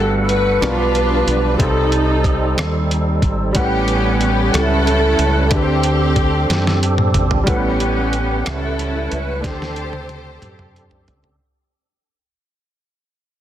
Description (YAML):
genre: slow gospel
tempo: 61 BPM (dotted quarters)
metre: 6/8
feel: straight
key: unclear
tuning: A4 = 440 Hz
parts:
  - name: warm studio string section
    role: melody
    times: 0.0-11.1 s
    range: B3 to C5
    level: -20 LUFS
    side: right 1 dB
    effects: slapback echo
  - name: clear baby grand piano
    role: accompaniment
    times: 0.0-11.4 s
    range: G2 to F#5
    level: -22 LUFS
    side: left 1 dB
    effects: none
  - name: tonewheel organ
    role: sustained chords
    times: 0.0-11.4 s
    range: F3 to F#5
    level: -24 LUFS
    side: right 2 dB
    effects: slow rotary speaker, overdrive, chorus vibrato
  - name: fingered electric bass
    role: bass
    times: 0.0-11.4 s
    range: G1 to F#2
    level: -20 LUFS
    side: equal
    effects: none
  - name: lo-fi sampler-style drum kit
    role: drums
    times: 0.3-11.4 s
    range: hi-hat, kick drum, rim click, snare drum, toms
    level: -21 LUFS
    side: equal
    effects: overdrive
room: light reverb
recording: dense, heavily limited modern master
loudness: -14 LUFS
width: side -11 dB against mid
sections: 0.0-7.5 A section; 7.5-11.4 B section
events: drum fill 6.5-7.5, 9.4-11.4; fade-out 7.5-11.4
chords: 0.0 Gmaj9; 0.6 G7/B; 1.6 Cm6; 3.6 A13; 5.5 D7sus4; 7.5 A13; 9.4 D7sus4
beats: 0.61 | 1.60 2.58 | 3.56 4.54 | 5.52 6.50 | 7.48 8.46 | 9.44 10.42